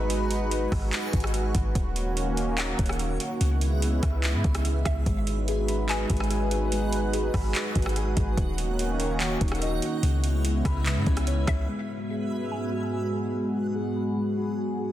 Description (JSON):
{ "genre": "hip hop, atmospheric cloud-rap", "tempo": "145 BPM", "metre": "4/4", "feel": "half-time", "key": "G# minor", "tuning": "A4 = 440 Hz", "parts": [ { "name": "dark analog pad", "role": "sustained chords", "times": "0.0-14.9 s", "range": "G#2 to B4", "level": "-29 LUFS", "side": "right 1 dB", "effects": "chorus, sidechain pumping, low-pass filter" }, { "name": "clean 808-style bass", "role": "bass", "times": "0.0-11.7 s", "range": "D#1 to G#2", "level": "-27 LUFS", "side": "equal", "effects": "none" }, { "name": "backwards swelling texture", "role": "texture", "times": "0.0-14.9 s", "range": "B3 to G#5", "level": "-39 LUFS", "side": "right 1 dB", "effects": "built-in reverb" }, { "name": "smooth R&B drum kit", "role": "drums", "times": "0.1-11.6 s", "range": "handclaps, hi-hat, kick drum, rim click", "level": "-29 LUFS", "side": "equal", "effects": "none" }, { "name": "hollow square pluck", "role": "melody", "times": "2.6-6.3, 9.2-12.9 s", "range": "E5 to G#5", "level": "-39 LUFS", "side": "left 1 dB", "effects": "chorus, low-pass filter, tape echo" }, { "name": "muted felt-like synth keys", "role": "arpeggios", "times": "5.1-14.9 s", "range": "C#3 to C#6", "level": "-32 LUFS", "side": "left 4 dB", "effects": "chorus, low-pass filter, tape echo" } ], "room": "little or no reverb", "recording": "dense, heavily limited modern master", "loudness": "-24 LUFS", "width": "side -13 dB against mid", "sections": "0.0-11.7 A section; 11.7-14.9 B section", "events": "filter sweep 11.7-14.9", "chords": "0.0 G#m7; 1.8 D#m7; 3.4 C#m7; 5.1 G#m7; 8.4 D#m7; 10.0 C#m7; 11.7 G#m7", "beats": "| 0.10 0.51 0.93 1.34 | 1.75 2.17 2.58 2.99 | 3.41 3.82 4.24 4.65 | 5.06 5.48 5.89 6.30 | 6.72 7.13 7.55 7.96 | 8.37 8.79 9.20 9.62 | 10.03 10.44 10.86 11.27 | 11.68 12.10 12.51 12.93 | 13.34 13.75 14.17 14.58" }